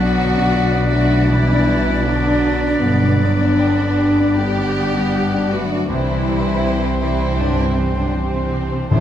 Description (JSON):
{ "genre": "cinematic, emotional film score for orchestra", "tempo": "79 BPM", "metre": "4/4", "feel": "rubato", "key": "unclear", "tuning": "A4 = 440 Hz", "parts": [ { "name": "muted symphonic violin section", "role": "melody", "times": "0.0-9.0 s", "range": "C5 to D5", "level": "-30 LUFS", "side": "left 1 dB", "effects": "none" }, { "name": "bright silver concert flute", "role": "second line", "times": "0.0-9.0 s", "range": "D5 to G5", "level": "-29 LUFS", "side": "left 2 dB", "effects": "none" }, { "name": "muted symphonic violin section", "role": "second line", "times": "0.0-9.0 s", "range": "B3 to G4", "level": "-24 LUFS", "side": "left 1 dB", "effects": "none" }, { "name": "warm clarinet", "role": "second line", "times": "0.0-9.0 s", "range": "D3 to B3", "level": "-26 LUFS", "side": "equal", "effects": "none" }, { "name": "warm oboe", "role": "second line", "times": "0.0-9.0 s", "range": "B4 to C5", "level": "-29 LUFS", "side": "equal", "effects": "none" }, { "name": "bright grand piano", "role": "accompaniment", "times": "0.0-9.0 s", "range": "A1 to G5", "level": "-24 LUFS", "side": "left 2 dB", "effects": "none" }, { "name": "muted symphonic viola section", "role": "accompaniment", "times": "0.0-9.0 s", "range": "B3 to A4", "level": "-28 LUFS", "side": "right 2 dB", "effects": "none" }, { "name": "mellow French horn section", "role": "sustained chords", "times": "0.0-9.0 s", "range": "C3 to A4", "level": "-24 LUFS", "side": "left 2 dB", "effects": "none" }, { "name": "concert harp", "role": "arpeggios", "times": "0.0-9.0 s", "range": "G2 to C6", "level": "-26 LUFS", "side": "left 3 dB", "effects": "none" }, { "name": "muted symphonic cello section", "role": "bass", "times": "0.0-9.0 s", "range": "B2 to G3", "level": "-23 LUFS", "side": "equal", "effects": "none" }, { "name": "muted symphonic double bass section", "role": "bass", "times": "0.0-9.0 s", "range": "G1 to C2", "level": "-21 LUFS", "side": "right 1 dB", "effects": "none" }, { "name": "timpani", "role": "percussion", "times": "8.9-9.0 s", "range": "A2", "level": "-13 LUFS", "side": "left 1 dB", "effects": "none" } ], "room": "wet stone room reverb, RT60 0.9 s", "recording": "heard from further back in the room", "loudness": "-15 LUFS", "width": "side -10 dB against mid", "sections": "0.0-9.0 A section", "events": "none", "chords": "0.0 Bm; 2.8 G; 5.9 C" }